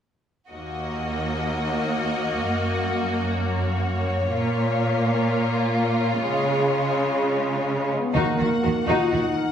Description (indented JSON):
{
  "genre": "cinematic",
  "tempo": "126 BPM",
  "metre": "4/4",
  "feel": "straight",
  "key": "Eb minor",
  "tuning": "A4 = 440 Hz",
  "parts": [
    { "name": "bright symphonic violin section", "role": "melody", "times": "0.5-9.5 s", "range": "Db5 to Gb5", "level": "-31 LUFS", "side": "left 3 dB", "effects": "none" },
    { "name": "rich symphonic violin section", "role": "second line", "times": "0.5-9.2 s", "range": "Eb4 to Bb4", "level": "-28 LUFS", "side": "left 2 dB", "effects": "none" },
    { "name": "clear symphonic viola section", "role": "accompaniment", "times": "0.5-9.2 s", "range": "Ab3 to Gb4", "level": "-27 LUFS", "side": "equal", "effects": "none" },
    { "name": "warm studio cello section", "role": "bass", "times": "0.5-9.2 s", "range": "Eb2 to Eb3", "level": "-25 LUFS", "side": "right 1 dB", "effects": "none" },
    { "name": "mellow French horn section", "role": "sustained chords", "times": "7.9-9.5 s", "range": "Ab3 to F4", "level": "-24 LUFS", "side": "equal", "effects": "none" },
    { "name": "timpani", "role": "percussion", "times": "8.1-8.8 s", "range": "Eb3", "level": "-31 LUFS", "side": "right 1 dB", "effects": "none" },
    { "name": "concert harp", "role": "arpeggios", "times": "8.2-9.5 s", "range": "Eb3 to Eb5", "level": "-31 LUFS", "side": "left 4 dB", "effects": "none" },
    { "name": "warm symphonic double bass section", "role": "bass", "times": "8.2-9.2 s", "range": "Eb2", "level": "-30 LUFS", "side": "right 3 dB", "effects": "none" }
  ],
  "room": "wet recital hall reverb, RT60 1.5 s",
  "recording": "recorded in a church or concert hall",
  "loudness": "-21 LUFS",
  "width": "side -8 dB against mid",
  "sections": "0.5-8.1 A section; 8.1-9.5 B section",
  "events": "none",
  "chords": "0.5 Ebm; 2.4 Gb; 4.3 Bbm; 6.2 Db; 8.1 Ebm"
}